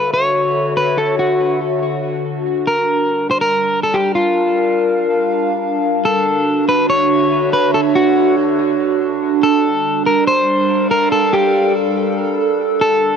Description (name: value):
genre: IDM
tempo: 142 BPM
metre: 4/4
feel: straight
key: unclear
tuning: A4 = 440 Hz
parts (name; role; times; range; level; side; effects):
- electric guitar at the edge of break-up; melody; 0.0-13.2 s; F4 to C#5; -16 LUFS; left 1 dB; tape echo
- warbly tape-like pad; sustained chords; 0.0-13.2 s; D3 to A5; -16 LUFS; right 1 dB; chorus, built-in reverb, phaser
room: moderate lush hall reverb, RT60 3.1 s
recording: dry, gritty hardware recording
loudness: -13 LUFS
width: side -6 dB against mid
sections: 0.0-6.1 A section; 6.1-13.2 B section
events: none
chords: 0.0 Dmaj7; 2.7 Gm7; 6.1 Dmaj7; 9.4 Gm7